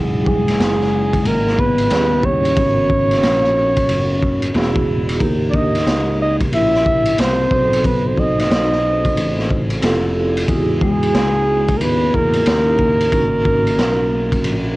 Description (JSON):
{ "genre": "hip hop, jazz-hop", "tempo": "91 BPM", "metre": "4/4", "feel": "swing 64% on 16ths", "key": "G# minor", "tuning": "A4 = 437 Hz", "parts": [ { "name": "vibraphone with soft mallets", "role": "accompaniment", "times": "0.0-14.8 s", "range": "F#3 to C5", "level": "-22 LUFS", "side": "right 2 dB", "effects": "cassette tape" }, { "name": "fretless electric bass", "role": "bass", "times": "0.0-14.8 s", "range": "E1 to E2", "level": "-22 LUFS", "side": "equal", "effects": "none" }, { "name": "mellow flugelhorn", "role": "melody", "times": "0.2-14.8 s", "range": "G4 to E5", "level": "-18 LUFS", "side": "right 1 dB", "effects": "none" }, { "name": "vibraphone with soft mallets", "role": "second line", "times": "0.2-14.8 s", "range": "G3 to E4", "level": "-22 LUFS", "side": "left 3 dB", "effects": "cassette tape" }, { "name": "crunchy breakbeat drum kit", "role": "drums", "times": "0.3-14.6 s", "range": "hi-hat, kick drum, ride cymbal, snare drum", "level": "-20 LUFS", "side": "equal", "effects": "cassette tape" } ], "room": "light reverb", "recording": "home recording on cassette", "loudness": "-14 LUFS", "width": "side -19 dB against mid", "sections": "0.0-14.8 A section", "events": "none", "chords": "0.0 Emaj9; 1.9 D#7b9; 2.6 G#m11; 4.5 Eadd9; 5.2 D#7b9; 7.5 B7b9; 9.8 Fmaj9; 10.5 Emaj9; 12.5 D#7b9; 13.1 G#m11", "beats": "0.59 1.25 1.91 | 2.57 3.23 3.89 4.55 | 5.21 5.87 6.53 7.19 | 7.85 8.51 9.16 9.82 | 10.48 11.14 11.80 12.46 | 13.12 13.78 14.44" }